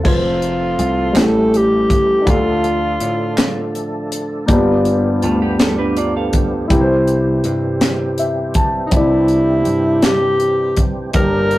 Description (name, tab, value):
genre	slow gospel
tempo	54 BPM (dotted quarters)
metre	6/8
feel	straight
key	unclear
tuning	A4 = 440 Hz
part	clean electric guitar	second line	0.0, 5.2-6.7 s	A3 to F5	-21 LUFS	right 3 dB	none
part	dark grand piano	accompaniment	0.0-11.6 s	G2 to A5	-18 LUFS	left 1 dB	none
part	dry thumbed slap bass	bass	0.0-11.6 s	F1 to A2	-23 LUFS	equal	none
part	tight funk drum kit	drums	0.0-11.6 s	crash cymbal, hi-hat, kick drum, snare drum	-17 LUFS	equal	none
part	warm alto saxophone	melody	0.1-3.8, 8.9-11.6 s	Eb4 to Bb4	-17 LUFS	equal	none
part	percussive tonewheel organ	sustained chords	0.1-11.6 s	D3 to A4	-25 LUFS	right 2 dB	slow rotary speaker, overdrive, chorus vibrato
part	group handclap	percussion	1.2-10.4 s	none	-28 LUFS	right 1 dB	none
room	moderate small room reverb, RT60 0.5 s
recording	rough rehearsal-room recording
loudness	-13 LUFS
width	side -16 dB against mid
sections	0.0-11.6 A section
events	grand piano fill 7.8-8.9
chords	0.0 F; 1.2 A7; 2.3 Dm; 4.5 G7; 6.7 C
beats	| 0.05 1.16 | 2.27 3.38 | 4.49 5.60 | 6.71 7.82 | 8.93 10.04 | 11.15